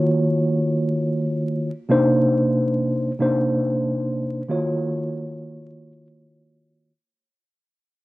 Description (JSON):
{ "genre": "hip hop", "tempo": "free time", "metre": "none", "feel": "none", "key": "unclear", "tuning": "A4 = 436 Hz", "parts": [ { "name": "mellow tine electric piano", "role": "accompaniment", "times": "0.0-6.9 s", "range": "C3 to Db5", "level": "-19 LUFS", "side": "equal", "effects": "medium stereo tremolo, cassette tape, high-pass filter, low-pass filter" } ], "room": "light reverb, small room ambience", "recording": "worn, warbling old tape, cassette tape, vinyl crackle, warbly pitch drift", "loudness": "-19 LUFS", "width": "side -19 dB against mid", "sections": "0.0-1.9 A section; 1.9-7.1 B section", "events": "fade-out 1.9-7.1", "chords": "0.0 Ebm9; 1.9 Cm9; 4.5 Ebm9" }